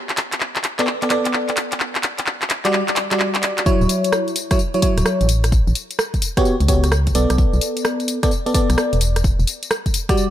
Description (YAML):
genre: UK garage, two-step garage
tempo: 129 BPM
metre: 4/4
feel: swing 65% on 16ths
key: unclear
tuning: A4 = 443 Hz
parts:
  - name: garage drum kit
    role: drums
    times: 0.1-10.3 s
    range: handclaps, hi-hat, rim click, tambourine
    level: -22 LUFS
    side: left 1 dB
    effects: none
  - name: FM electric piano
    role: stabs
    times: 0.8-10.3 s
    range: F#3 to D5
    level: -20 LUFS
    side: equal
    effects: chorus, cassette tape, ping-pong delay
  - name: electronic kick drum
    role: drums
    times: 3.7-10.2 s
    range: none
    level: -19 LUFS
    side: equal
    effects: none
  - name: organ-like FM bass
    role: bass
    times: 3.8-9.5 s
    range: D1 to C#2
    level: -17 LUFS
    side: equal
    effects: none
room: light reverb, digital ambience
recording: none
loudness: -16 LUFS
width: side -12 dB against mid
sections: 0.0-3.7 A section; 3.7-10.3 B section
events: build-up 0.0-3.7; drum fill 0.0-3.7; drop 3.7-10.3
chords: 0.0 Bm7; 1.6 Dadd11/G; 3.7 Dmaj9 (rootless); 5.3 A13; 7.2 Bm7; 9.0 Em9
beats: 0.41 0.87 1.34 | 1.80 2.27 2.73 3.20 | 3.66 4.13 4.59 5.06 | 5.52 5.99 6.45 6.92 | 7.38 7.85 8.31 8.78 | 9.24 9.71 10.17